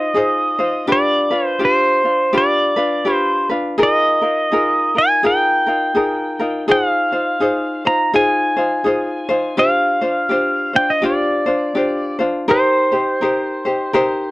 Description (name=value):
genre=Hawaiian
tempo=83 BPM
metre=4/4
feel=swing 61% on 8ths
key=unclear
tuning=A4 = 439 Hz
part: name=pedal steel guitar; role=melody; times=0.0-14.3 s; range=C5 to Bb5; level=-16 LUFS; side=equal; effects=none
part: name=ukulele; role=accompaniment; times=0.0-14.3 s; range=D4 to C5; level=-18 LUFS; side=left 1 dB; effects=none
room=light reverb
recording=dry, close 1970s-style studio recording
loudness=-14 LUFS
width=side -19 dB against mid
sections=0.0-14.3 A section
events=none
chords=0.0 Fm7; 0.9 G7; 3.8 Bb7sus4; 6.7 Fm7; 9.6 G7sus4; 12.5 Cm7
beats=0.15 | 0.88 1.60 2.33 3.06 | 3.78 4.51 5.23 5.96 | 6.68 7.41 8.13 8.86 | 9.58 10.31 11.04 11.76 | 12.49 13.21 13.94